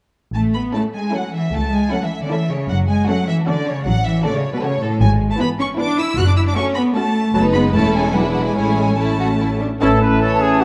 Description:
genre	quick classical-period movement for symphony orchestra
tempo	153 BPM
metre	3/4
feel	rubato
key	A major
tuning	A4 = 439 Hz
part	warm studio violin section	melody	0.3-10.0 s	A4 to F#6	-27 LUFS	equal	none
part	rich studio cello section	bass	0.3-10.1 s	A2 to F#4	-22 LUFS	equal	none
part	rich studio double bass section	bass	0.3-10.1 s	E1 to C#2	-22 LUFS	equal	none
part	rich studio violin section	second line	0.7-10.6 s	D4 to F#5	-27 LUFS	equal	none
part	warm studio viola section	accompaniment	0.7-10.0 s	E3 to E4	-26 LUFS	equal	none
part	mellow clarinet	second line	9.8-10.6 s	C#4	-25 LUFS	equal	none
part	silver concert flute	second line	9.8-10.6 s	A5	-25 LUFS	equal	none
part	warm bassoon	accompaniment	9.8-10.6 s	E3	-24 LUFS	equal	none
part	dark French horn section	sustained chords	9.8-10.6 s	A3 to C#4	-24 LUFS	equal	none
part	bright trumpet section	stabs	9.8-10.6 s	F#4 to B4	-21 LUFS	equal	none
room	moderate scoring stage reverb, RT60 2.0 s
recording	dark, warm production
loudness	-18 LUFS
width	mono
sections	0.3-9.8 A section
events	none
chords	0.3 A; 1.5 A/C#; 2.7 F#m; 3.9 F#m/A; 5.0 E/G#; 6.2 F#m; 7.4 B/F#; 7.7 A/E; 8.1 E7; 8.6 A

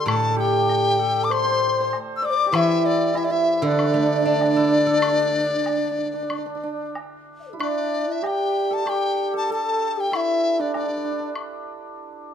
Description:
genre	chinese traditional, Chinese chamber ensemble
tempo	96 BPM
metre	4/4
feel	uneven beats, rubato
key	D shang mode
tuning	A4 = 444 Hz
part	mellow hollow large dizi	melody	0.0-11.3 s	D5 to E6	-23 LUFS	left 3 dB	none
part	hammered dulcimer	second line	0.0-12.3 s	D4 to D5	-27 LUFS	right 5 dB	none
part	mellow xiao	second line	0.0-11.3 s	D4 to E5	-26 LUFS	left 2 dB	none
part	steel-string zither	accompaniment	0.1-6.1 s	A2 to A4	-25 LUFS	right 2 dB	none
part	woodblock	percussion	0.1-11.5 s	none	-31 LUFS	left 3 dB	none
room	light reverb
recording	close, detailed microphones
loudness	-19 LUFS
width	side -8 dB against mid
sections	0.0-7.6 A section; 7.6-12.3 B section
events	none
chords	none

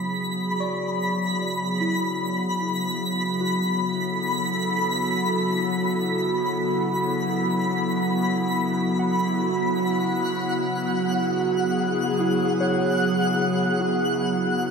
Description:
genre	ambient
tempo	75 BPM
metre	4/4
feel	straight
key	F# minor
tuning	A4 = 437 Hz
part	airy breathy pad	sustained chords	0.0-14.7 s	C#3 to A4	-26 LUFS	equal	chorus
part	analog drone	drone	0.0-14.7 s	F#3 to F#4	-26 LUFS	right 1 dB	chorus
part	twinkling granular texture	texture	0.0-14.7 s	F#5 to B6	-26 LUFS	left 1 dB	built-in reverb, wide subtle chorus
part	soft synth bell	arpeggios	0.6-14.7 s	E4 to C#6	-33 LUFS	left 2 dB	chorus, phaser, tape echo
room	wet lush hall reverb, RT60 3.1 s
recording	dreamy mix soaked in reverb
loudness	-21 LUFS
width	side -5 dB against mid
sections	0.0-14.7 A section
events	fade-in on analog synth pad 0.0-14.7; fade-in on synth bell 0.0-14.7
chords	0.0 E; 3.4 F#m; 9.8 C#m

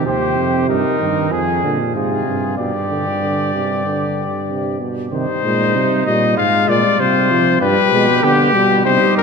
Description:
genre	classical, imitative canzona for brass ensemble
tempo	96 BPM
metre	4/4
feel	straight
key	C minor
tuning	A4 = 439 Hz
part	warm trumpet	melody	0.0-9.2 s	G4 to F5	-18 LUFS	left 7 dB	none
part	mellow euphonium	accompaniment	0.0-9.2 s	B2 to B3	-20 LUFS	right 2 dB	none
part	mellow bass trombone	bass	0.0-9.2 s	Eb2 to D3	-21 LUFS	right 2 dB	none
part	mellow trumpet	second line	0.1-9.2 s	Eb4 to Ab4	-22 LUFS	right 5 dB	none
room	wet cathedral reverb, RT60 6.3 s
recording	none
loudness	-14 LUFS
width	side -5 dB against mid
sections	0.0-5.1 A section; 5.1-9.2 B section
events	none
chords	0.1 Cm/Eb; 1.3 Ddim/F (rootless); 2.6 G; 5.1 Cm; 6.4 Fm/Ab; 7.6 G

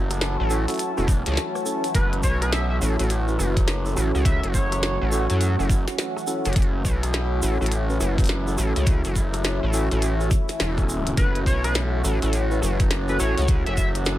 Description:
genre	glitch hop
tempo	104 BPM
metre	4/4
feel	swing 62% on 16ths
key	F# minor pentatonic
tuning	A4 = 437 Hz
part	warm analog pad	sustained chords	0.0-14.2 s	E3 to F#4	-33 LUFS	right 1 dB	chorus, sidechain pumping
part	tine electric piano	stabs	0.0-14.2 s	C#4 to B4	-30 LUFS	equal	medium tremolo, sidechain pumping, digital delay
part	gritty driven synth bass	bass	0.0-14.2 s	E1 to F#2	-23 LUFS	equal	overdrive
part	deep dark ambient pad	texture	0.0-14.2 s	F#4 to A5	-31 LUFS	left 1 dB	chorus, built-in reverb, sidechain pumping
part	glitchy drum kit	drums	0.1-14.2 s	hi-hat, rim click, snare drum	-28 LUFS	equal	none
part	egg shaker	percussion	0.1-14.2 s	none	-35 LUFS	right 2 dB	none
part	electronic kick drum	drums	1.1-13.9 s	none	-22 LUFS	equal	overdrive
part	sync lead	melody	1.9-5.4, 11.2-13.9 s	B4 to E5	-29 LUFS	equal	chorus, digital delay
room	little or no reverb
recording	none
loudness	-20 LUFS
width	side -14 dB against mid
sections	0.0-14.2 A section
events	none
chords	0.0 F#m7

